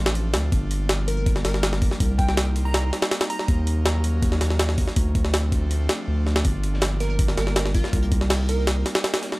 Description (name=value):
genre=drum and bass, jungle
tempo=162 BPM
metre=4/4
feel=straight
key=G minor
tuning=A4 = 440 Hz
part: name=airy breathy pad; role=sustained chords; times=0.0-9.4 s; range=F3 to Eb4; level=-32 LUFS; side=equal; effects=chorus
part: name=saturated sub bass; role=bass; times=0.0-8.8 s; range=G1 to Eb2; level=-23 LUFS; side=equal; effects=tube saturation
part: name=jungle sampler-style drum kit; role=drums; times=0.1-9.4 s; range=hi-hat, kick drum, snare drum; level=-23 LUFS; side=equal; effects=small room ambience
part: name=glassy wavetable pluck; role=melody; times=1.1-3.5, 7.0-8.8 s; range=F4 to Bb5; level=-32 LUFS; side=right 1 dB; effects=chorus, cassette tape, dub echo
part: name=crunchy breakbeat drum kit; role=drums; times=6.4-9.4 s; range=hi-hat, shaker, snare drum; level=-38 LUFS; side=left 1 dB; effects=none
room=studio reverb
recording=dry, gritty hardware recording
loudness=-20 LUFS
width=side -22 dB against mid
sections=0.0-9.4 A section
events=none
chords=0.0 Dm7; 0.5 Gm7; 2.0 Cm7; 3.5 Ebm7; 5.0 Dm7; 6.4 Gm7; 7.9 Cm7